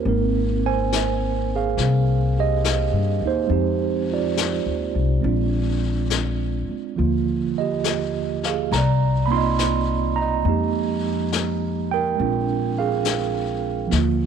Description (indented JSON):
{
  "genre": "jazz ballad",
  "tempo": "69 BPM",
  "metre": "4/4",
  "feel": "swing 66% on 8ths",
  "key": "unclear",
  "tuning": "A4 = 440 Hz",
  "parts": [
    { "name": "tine electric piano", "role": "accompaniment", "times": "0.0-14.3 s", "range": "D3 to C6", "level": "-22 LUFS", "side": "right 9 dB", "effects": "medium stereo tremolo" },
    { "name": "upright bass", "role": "bass", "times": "0.1-14.3 s", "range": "Ab1 to G2", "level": "-23 LUFS", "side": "left 3 dB", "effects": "none" },
    { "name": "vintage brush drum kit", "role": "drums", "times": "0.1-14.3 s", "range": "brushed snare drum, hi-hat, snare drum", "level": "-29 LUFS", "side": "left 12 dB", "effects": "none" }
  ],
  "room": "small room ambience",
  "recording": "1960s-style stereo with parts hard left and right",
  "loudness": "-20 LUFS",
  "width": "side -7 dB against mid",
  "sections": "0.0-14.3 A section",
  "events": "none",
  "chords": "0.1 Abmaj9; 3.5 Fm9; 5.2 Bb9; 7.0 Ebmaj9; 8.7 Cm11; 10.4 Fm11; 12.2 Bb9",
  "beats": "| 0.06 0.92 1.78 2.64 | 3.50 4.37 5.24 6.11 | 6.98 7.85 8.72 9.59 | 10.45 11.31 12.18 13.04 | 13.90"
}